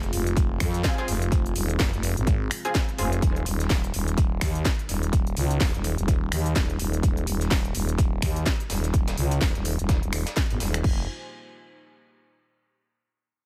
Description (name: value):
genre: bass house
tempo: 126 BPM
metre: 4/4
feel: swing 59% on 16ths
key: F minor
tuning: A4 = 440 Hz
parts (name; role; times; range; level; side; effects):
- dark analog pad; sustained chords; 0.0-11.1 s; Bb3 to Ab4; -41 LUFS; equal; none
- growling FM bass; bass; 0.0-11.1 s; Eb1 to F2; -28 LUFS; equal; overdrive, sidechain pumping
- house drum kit; drums; 0.0-11.0 s; crash cymbal, finger snaps, hi-hat, snare drum; -34 LUFS; equal; none
- dusty soul sampler-style drum kit; drums; 0.1-10.7 s; hi-hat, snare drum; -41 LUFS; equal; overdrive, high-pass filter on hats, high-pass filter on snare, high-pass filter on room
- electronic kick drum; drums; 0.4-11.0 s; none; -26 LUFS; equal; none
- orchestra-hit-like synth stab; stabs; 0.8-3.1 s; C4 to Ab4; -35 LUFS; equal; built-in reverb, sidechain pumping, dub echo
room: digital ambience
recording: none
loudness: -25 LUFS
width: mono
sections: 0.0-10.8 A section; 10.8-12.7 B section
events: filter sweep on FM bass 0.0-10.8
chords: 0.0 Fm; 3.2 Eb; 10.8 Fm